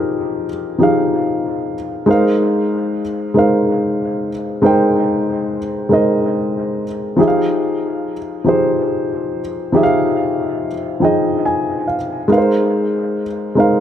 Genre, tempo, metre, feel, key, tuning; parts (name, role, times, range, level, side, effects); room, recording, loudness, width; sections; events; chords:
R&B; 47 BPM (dotted quarters); 6/8; straight; F minor; A4 = 440 Hz
dark baby grand piano; solo; 0.0-13.8 s; F3 to Ab5; -14 LUFS; equal; dub echo
moderate echo chamber reverb, RT60 1.5 s, studio reverb; echo-heavy mix, faint mains hum; -14 LUFS; side -10 dB against mid
0.0-13.8 A section
grand piano fill 11.0-12.3
0.0 Fm7; 2.1 Ab6; 7.2 Fm7; 12.3 Ab6